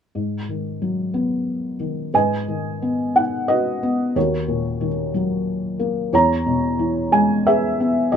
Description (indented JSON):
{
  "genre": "classical, lyrical solo piano",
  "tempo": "60 BPM (dotted quarters)",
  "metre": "6/8",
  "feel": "rubato",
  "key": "G# minor",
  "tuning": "A4 = 440 Hz",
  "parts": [
    { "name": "felt-muted upright piano", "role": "solo", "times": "0.1-8.2 s", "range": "D#2 to A#5", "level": "-18 LUFS", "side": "equal", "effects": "none" }
  ],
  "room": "moderate booth ambience, RT60 0.2 s",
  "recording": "none",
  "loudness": "-18 LUFS",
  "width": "side -7 dB against mid",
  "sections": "0.2-2.1 A section; 2.1-8.2 B section",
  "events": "none",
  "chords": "0.2 G#m7; 4.2 D#m7; 6.1 C#m7/E"
}